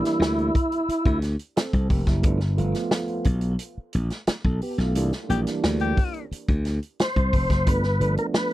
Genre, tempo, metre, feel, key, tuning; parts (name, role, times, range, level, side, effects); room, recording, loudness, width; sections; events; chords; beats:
funk; 88 BPM; 4/4; straight; A4 = 439 Hz
tonewheel organ; melody; 0.0-1.2, 7.0-8.5 s; E4 to C5; -24 LUFS; equal; chorus vibrato, stopped rotary speaker
mellow tonewheel organ; stabs; 0.0-8.5 s; E3 to A4; -29 LUFS; right 3 dB; chorus vibrato, slow rotary speaker, tube saturation, tape echo
vintage drum kit; drums; 0.0-8.5 s; hi-hat, kick drum, snare drum; -24 LUFS; equal
slap bass; bass; 0.2-8.2 s; F1 to D2; -23 LUFS; equal
breathy tenor saxophone; second line; 5.3-6.2 s; G4; -28 LUFS; left 8 dB
little or no reverb; dry, close 1970s-style studio recording; -21 LUFS; side -15 dB against mid
0.0-8.5 A section
band accent 5.0-7.7
0.0 C9; 2.2 G9; 5.0 C9; 7.7 G9
0.20 0.88 1.56 | 2.24 2.92 3.60 4.28 | 4.96 5.63 6.32 7.00 | 7.68 8.36